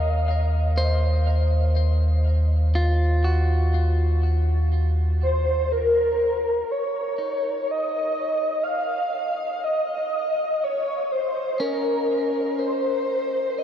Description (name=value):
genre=ambient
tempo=61 BPM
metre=3/4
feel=straight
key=Eb dorian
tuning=A4 = 442 Hz
part: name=breathy flute-like synth lead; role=melody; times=0.0-0.3, 5.2-13.6 s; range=Bb4 to F5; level=-23 LUFS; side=equal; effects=ensemble chorus, ping-pong delay
part: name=clean electric guitar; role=arpeggios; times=0.0-13.0 s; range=Db4 to F5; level=-30 LUFS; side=equal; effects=spring reverb, ping-pong delay
part: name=round analog bass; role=bass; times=0.0-6.6 s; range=Eb2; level=-20 LUFS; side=equal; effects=none
room=wet huge ambient reverb, RT60 8.4 s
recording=dark, warm production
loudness=-20 LUFS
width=side -9 dB against mid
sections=0.0-6.7 A section; 6.7-13.6 B section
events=fade-in on analog synth bass 0.0-6.7; fade-out on clean electric guitar 0.0-6.7; fade-in on clean electric guitar 6.7-13.6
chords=0.0 Ebm; 6.7 N.C.